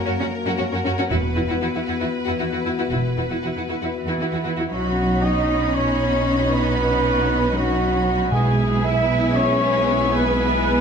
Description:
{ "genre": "cinematic, epic orchestral film score", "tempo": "233 BPM (eighths)", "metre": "7/8", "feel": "straight", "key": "B major", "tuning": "A4 = 439 Hz", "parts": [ { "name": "rich symphonic violin section", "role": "melody", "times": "0.0-10.8 s", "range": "A#4 to B5", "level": "-31 LUFS", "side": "left 2 dB", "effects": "none" }, { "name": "rich symphonic viola section", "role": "accompaniment", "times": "0.0-10.8 s", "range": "B3 to E4", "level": "-28 LUFS", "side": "equal", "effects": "none" }, { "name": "mellow French horn section", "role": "sustained chords", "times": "0.0-10.8 s", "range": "G#3 to F#4", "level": "-29 LUFS", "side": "left 6 dB", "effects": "none" }, { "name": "rich symphonic violin section", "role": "second line", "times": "0.1-10.8 s", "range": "D#4 to F#4", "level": "-30 LUFS", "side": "equal", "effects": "none" }, { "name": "warm symphonic cello section", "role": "bass", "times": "0.1-10.8 s", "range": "E2 to E4", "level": "-26 LUFS", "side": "right 2 dB", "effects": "none" }, { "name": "clear symphonic double bass section", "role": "bass", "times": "1.1-10.8 s", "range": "E1 to B1", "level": "-24 LUFS", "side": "right 2 dB", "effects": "none" }, { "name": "warm trumpet section", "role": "stabs", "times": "3.9-10.8 s", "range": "E4 to E5", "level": "-22 LUFS", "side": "right 1 dB", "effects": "none" }, { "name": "clear symphonic string section", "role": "sustained chords", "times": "4.7-10.8 s", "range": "B3 to E5", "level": "-28 LUFS", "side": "equal", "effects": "none" }, { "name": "timpani", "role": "percussion", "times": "8.3-9.1 s", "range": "B2", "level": "-24 LUFS", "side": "equal", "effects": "none" } ], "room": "wet recital hall reverb, RT60 1.7 s", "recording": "none", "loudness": "-18 LUFS", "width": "side -6 dB against mid", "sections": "0.0-4.7 A section; 4.7-10.8 B section", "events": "build-up 0.0-4.7", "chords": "0.0 F#; 1.1 Esus2; 4.7 Badd9; 8.3 E/B", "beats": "0.07 0.33 0.58 0.84 | 1.10 1.36 1.62 1.88 2.13 2.39 2.65 | 2.91 3.17 3.42 3.68 3.94 4.20 4.46 | 4.71 4.97 5.23 5.49 5.74 6.00 6.26 | 6.52 6.77 7.03 7.29 7.55 7.80 8.06 | 8.32 8.58 8.83 9.09 9.35 9.61 9.86 | 10.12 10.38 10.63" }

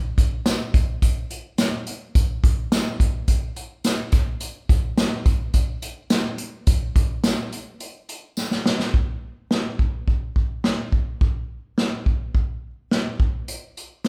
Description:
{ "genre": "pop", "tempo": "106 BPM", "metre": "4/4", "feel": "straight", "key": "none", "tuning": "none", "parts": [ { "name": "unplugged drum kit", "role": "drums", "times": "0.2-14.1 s", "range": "hi-hat, kick drum, snare drum", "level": "-22 LUFS", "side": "equal", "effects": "none" }, { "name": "tambourine", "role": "percussion", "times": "0.5-8.5 s", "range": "none", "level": "-39 LUFS", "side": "equal", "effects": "none" } ], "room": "light reverb", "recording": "band playing live in one room", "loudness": "-23 LUFS", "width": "mono", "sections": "0.0-8.9 A section; 8.9-14.1 B section", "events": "drum fill 8.4-8.9", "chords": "none", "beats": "0.46 1.02 1.59 | 2.15 2.72 3.28 3.85 | 4.42 4.98 5.55 6.11 | 6.68 7.24 7.81 8.38 | 8.94 9.51 10.07 10.64 | 11.21 11.78 12.35 12.91 | 13.48 14.05" }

